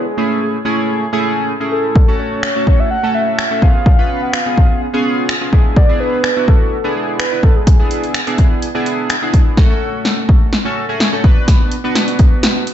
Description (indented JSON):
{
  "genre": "dance-pop",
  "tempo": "126 BPM",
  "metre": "4/4",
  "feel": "straight",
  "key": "F# minor",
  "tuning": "A4 = 444 Hz",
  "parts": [
    { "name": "soft octave-layered synth lead", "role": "melody", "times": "0.0-8.0 s", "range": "G#4 to F#5", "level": "-20 LUFS", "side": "equal", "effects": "chorus, dub echo" },
    { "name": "chorused polysynth", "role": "accompaniment", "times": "0.0-12.6 s", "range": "A3 to B4", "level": "-18 LUFS", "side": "right 1 dB", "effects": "sidechain pumping" },
    { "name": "deep house drum kit", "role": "drums", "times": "2.0-12.7 s", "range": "finger snaps, hi-hat, kick drum, snare drum", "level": "-12 LUFS", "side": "equal", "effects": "none" }
  ],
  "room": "light reverb, digital ambience",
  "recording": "dark, warm production, nothing above 7.8 kHz",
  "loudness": "-12 LUFS",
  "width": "side -10 dB against mid",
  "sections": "0.0-9.6 A section; 9.6-12.7 B section",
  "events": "build-up 9.6-12.7; drum fill 9.6-12.7",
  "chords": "0.1 Amaj7; 2.0 F#m; 3.6 C#7; 5.5 E7; 9.6 F#m; 11.2 Bm",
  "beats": "| 0.05 0.53 1.00 1.48 | 1.96 2.43 2.91 3.38 | 3.86 4.34 4.81 5.29 | 5.76 6.24 6.72 7.19 | 7.67 8.15 8.62 9.10 | 9.57 10.05 10.53 11.00 | 11.48 11.96 12.43"
}